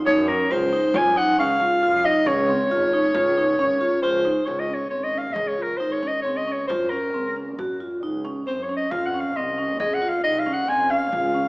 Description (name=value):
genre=contemporary instrumental, chamber music in an uneven meter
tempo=136 BPM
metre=5/4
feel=straight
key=Db major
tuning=A4 = 440 Hz
part: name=breathy soprano saxophone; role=melody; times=0.1-11.5 s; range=Bb4 to Ab5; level=-21 LUFS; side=equal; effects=none
part: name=vibraphone with soft mallets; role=arpeggios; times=0.1-11.5 s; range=C4 to Ab4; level=-25 LUFS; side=right 1 dB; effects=none
part: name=rich double bass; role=bass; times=0.1-11.5 s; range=Ab1 to Gb2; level=-32 LUFS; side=right 1 dB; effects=none
part: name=frame drum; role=percussion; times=0.1-11.5 s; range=none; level=-38 LUFS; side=equal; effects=none
room=wet recital hall reverb, RT60 1.6 s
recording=small speaker sound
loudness=-20 LUFS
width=side -24 dB against mid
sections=0.0-4.5 A section; 4.5-11.5 B section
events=none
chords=0.1 Gb5; 2.3 Db; 6.7 Gbmaj7; 8.9 F7(no3)